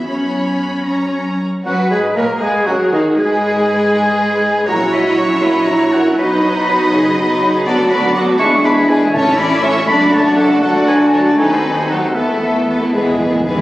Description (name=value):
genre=quick classical-period movement for symphony orchestra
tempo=75-82 BPM (dotted quarters)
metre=6/8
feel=rubato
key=B major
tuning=A4 = 440 Hz
part: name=rich chamber violin section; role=melody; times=0.0-12.9 s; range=F#4 to B5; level=-26 LUFS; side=left 1 dB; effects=none
part: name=rich chamber violin section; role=second line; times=0.0-13.6 s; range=A#3 to E5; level=-22 LUFS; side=equal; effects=none
part: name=rich chamber viola section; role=accompaniment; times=0.0-13.6 s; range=D#3 to F#4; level=-23 LUFS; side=equal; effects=none
part: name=warm chamber cello section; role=bass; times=0.0-13.3 s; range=B3 to B4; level=-21 LUFS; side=right 1 dB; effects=none
part: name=warm chamber double bass section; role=bass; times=0.0-13.5 s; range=F#1 to A#2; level=-24 LUFS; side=equal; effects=none
part: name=warm clarinet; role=second line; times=0.1-13.4 s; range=B3 to A#4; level=-21 LUFS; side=equal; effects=none
part: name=mellow bassoon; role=accompaniment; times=1.6-13.4 s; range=D#3 to A#3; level=-22 LUFS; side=right 1 dB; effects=none
part: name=large flute ensemble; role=second line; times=1.7-12.9 s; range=D#5 to D6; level=-22 LUFS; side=left 1 dB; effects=none
part: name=warm oboe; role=second line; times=1.7-12.9 s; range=D#5 to D6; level=-20 LUFS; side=equal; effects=none
part: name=clear French horn section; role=sustained chords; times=1.7-13.4 s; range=D#3 to E4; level=-19 LUFS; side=equal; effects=none
part: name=timpani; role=percussion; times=9.1-9.8, 12.9-13.6 s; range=E2 to A2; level=-24 LUFS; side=equal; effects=none
room=wet scoring stage reverb, RT60 2.1 s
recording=recorded on a phone in the room, club reverb, compression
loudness=-12 LUFS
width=side -16 dB against mid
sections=0.0-1.7 A section; 1.7-13.6 A section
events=timpani fill 12.9-13.6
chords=0.1 F#sus4; 0.9 F#; 1.7 B/F#; 3.2 G#m; 4.7 F#7/A#; 6.2 B; 7.7 Bm7/D; 8.4 E7; 9.1 A; 9.9 D/F#; 10.6 D; 11.4 D#dim7; 12.2 Esus4; 12.9 E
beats=| 0.07 0.86 | 1.65 2.41 | 3.19 3.94 | 4.68 5.43 | 6.20 6.93 | 7.67 8.40 | 9.14 9.88 | 10.63 11.39 | 12.16 12.94